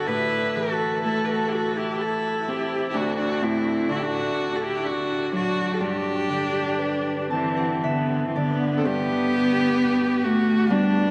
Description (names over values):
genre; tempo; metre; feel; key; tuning
celtic folk, Celtic slow air; 56-67 BPM; 3/4; rubato; G major; A4 = 440 Hz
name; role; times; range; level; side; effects
dark cello; melody; 0.0-11.1 s; D3 to B4; -26 LUFS; equal; none
clear viola; second line; 0.0-11.1 s; B3 to A4; -30 LUFS; equal; none
Celtic harp; accompaniment; 0.0-11.1 s; D2 to A5; -30 LUFS; equal; none
room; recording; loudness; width
wet cathedral reverb, RT60 6.1 s; in a vast, echoing space; -24 LUFS; mono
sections
0.0-8.9 A section; 8.9-11.1 B section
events
harp fill 6.8-8.9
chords
0.1 Am; 3.0 D; 5.8 G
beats
| 0.08 1.05 2.01 | 2.96 3.90 4.85 | 5.81 6.79 7.83 | 8.85 9.79 10.70